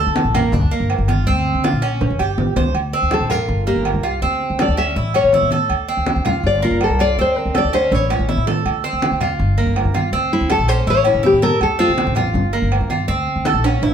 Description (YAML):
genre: latin, Cuban son and guajira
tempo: 162 BPM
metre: 4/4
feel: straight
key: D minor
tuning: A4 = 440 Hz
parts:
  - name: Cuban tres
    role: arpeggios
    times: 0.0-13.9 s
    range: Bb3 to C5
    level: -21 LUFS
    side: right 4 dB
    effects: none
  - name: upright bass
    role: bass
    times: 0.0-13.9 s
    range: G1 to D3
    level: -20 LUFS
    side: left 1 dB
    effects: none
  - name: congas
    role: percussion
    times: 0.2-13.9 s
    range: none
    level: -24 LUFS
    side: left 1 dB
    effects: none
  - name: timbales and agogo bells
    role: percussion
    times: 0.2-13.9 s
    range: none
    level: -24 LUFS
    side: right 6 dB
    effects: none
  - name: nylon-string guitar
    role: melody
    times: 3.1-11.9 s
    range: E4 to E5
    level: -17 LUFS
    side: left 3 dB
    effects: none
room: moderate stone room reverb, RT60 0.9 s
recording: band playing live in one room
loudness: -15 LUFS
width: side -8 dB against mid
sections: 0.0-2.7 A section; 2.7-13.9 B section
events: drum fill 2.0-2.7, 7.7-8.7, 13.6; nylon-string guitar solo 2.7-13.9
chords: 0.0 D5; 0.5 Gm7; 1.3 Dm7; 2.0 A7; 2.7 Dm7; 3.5 Gm7; 4.2 D5; 5.0 A; 5.7 Dm7; 6.4 Gm7; 7.2 D5; 7.9 A; 8.7 Dm7; 9.4 Gm7; 10.1 D5; 10.9 A; 11.6 Dm7; 12.3 Gm7; 13.1 D5